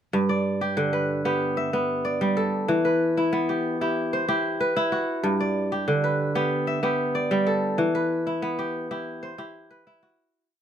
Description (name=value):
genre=west african traditional, West African string and xylophone music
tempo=94 BPM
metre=4/4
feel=straight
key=G major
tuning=A4 = 440 Hz
part: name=kora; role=solo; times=0.1-10.6 s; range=G2 to E5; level=-22 LUFS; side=equal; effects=none
room=light reverb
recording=close, detailed microphones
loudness=-22 LUFS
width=side -9 dB against mid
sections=0.1-10.4 A section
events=fade-out 7.8-10.4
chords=0.1 G; 2.7 Em; 5.2 G; 7.8 Em